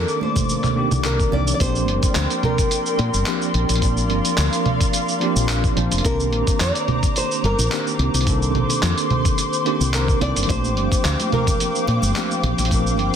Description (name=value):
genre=sunset chillout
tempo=108 BPM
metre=4/4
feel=swing 54% on 16ths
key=unclear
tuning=A4 = 436 Hz
part: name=nylon-string guitar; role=melody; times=0.0-11.8 s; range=Bb4 to D5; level=-27 LUFS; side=equal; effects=ping-pong delay
part: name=bell-like tine electric piano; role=accompaniment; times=0.0-13.2 s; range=Eb3 to C5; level=-25 LUFS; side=right 1 dB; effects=medium stereo tremolo, auto-pan, ping-pong delay
part: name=airy breathy pad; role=sustained chords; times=0.0-13.2 s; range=Bb3 to D6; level=-25 LUFS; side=left 2 dB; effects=chorus
part: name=woody fretless electric bass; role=bass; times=0.0-13.1 s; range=F1 to Bb2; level=-21 LUFS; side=equal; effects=none
part: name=dusty soul sampler-style drum kit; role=drums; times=0.1-13.1 s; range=congas, handclaps, hi-hat, shaker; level=-24 LUFS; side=right 3 dB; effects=none
part: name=congas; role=percussion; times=0.2-1.4, 10.5-12.8 s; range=none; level=-30 LUFS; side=right 2 dB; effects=none
part: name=electronic kick drum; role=drums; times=0.4-12.8 s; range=none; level=-22 LUFS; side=equal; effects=none
room=light reverb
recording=dense, heavily limited modern master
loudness=-17 LUFS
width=side -8 dB against mid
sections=0.0-1.6 A section; 1.6-13.2 B section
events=filter sweep on tine electric piano 0.0-1.6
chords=0.0 Cm9; 1.6 Bb69; 6.0 Cm9; 10.5 Bb69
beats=0.49 1.05 | 1.60 2.16 2.71 3.27 | 3.82 4.38 4.93 5.49 | 6.05 6.60 7.16 7.71 | 8.27 8.82 9.38 9.94 | 10.49 11.05 11.60 12.16 | 12.71